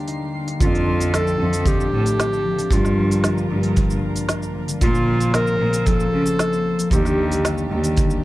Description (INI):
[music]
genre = folktronica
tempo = 114 BPM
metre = 4/4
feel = straight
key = F mixolydian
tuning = A4 = 441 Hz
[part]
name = warm clarinet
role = melody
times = 0.0-7.7 s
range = F4 to Bb4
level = -24 LUFS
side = equal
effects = vintage 12-bit sampler grit, tape echo
[part]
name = rich string quartet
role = sustained chords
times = 0.0-8.2 s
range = Eb2 to C5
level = -32 LUFS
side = right 3 dB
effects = vintage 12-bit sampler grit
[part]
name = concert harp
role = arpeggios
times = 0.0-8.2 s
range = D3 to Eb4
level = -24 LUFS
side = left 3 dB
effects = none
[part]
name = twinkling granular texture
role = texture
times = 0.0-0.6 s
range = C6 to C7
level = -41 LUFS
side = left 1 dB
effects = built-in reverb
[part]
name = organic electronic drum kit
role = drums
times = 0.1-8.2 s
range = cabasa, hi-hat, snare drum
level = -27 LUFS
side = right 1 dB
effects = overdrive
[part]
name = rich cello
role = bass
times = 0.6-8.2 s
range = Eb2 to Db3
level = -21 LUFS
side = right 1 dB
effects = none
[part]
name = kick drum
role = drums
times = 0.6-8.1 s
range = none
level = -24 LUFS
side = right 1 dB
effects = none
[sound]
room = light reverb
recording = none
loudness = -17 LUFS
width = side -16 dB against mid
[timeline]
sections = 0.6-8.2 A section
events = none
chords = 0.0 Ebmaj7; 0.6 F6; 2.7 Gm7; 4.8 Bbmadd9; 6.9 Ebmaj7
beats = 0.08 | 0.60 1.13 1.66 2.18 | 2.71 3.24 3.76 4.29 | 4.82 5.34 5.87 6.39 | 6.92 7.45 7.97